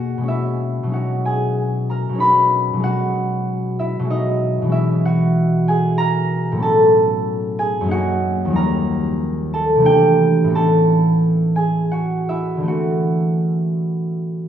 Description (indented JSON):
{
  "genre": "classical, solo harp piece",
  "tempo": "70-98 BPM",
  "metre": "3/4",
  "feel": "rubato",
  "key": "unclear",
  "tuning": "A4 = 440 Hz",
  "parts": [
    { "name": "concert harp", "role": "solo", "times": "0.0-14.5 s", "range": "D#2 to B5", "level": "-16 LUFS", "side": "equal", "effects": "none" }
  ],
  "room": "moderate concert hall reverb, RT60 2.0 s",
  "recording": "none",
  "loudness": "-16 LUFS",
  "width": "side -9 dB against mid",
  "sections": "0.0-14.5 A section",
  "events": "none",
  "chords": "0.3 E69/B; 0.9 C#m11/B; 2.8 B6; 4.7 E69/B; 6.6 A69; 7.9 F#69; 8.6 D#add9; 9.9 C69; 10.6 Aadd9; 12.7 D9"
}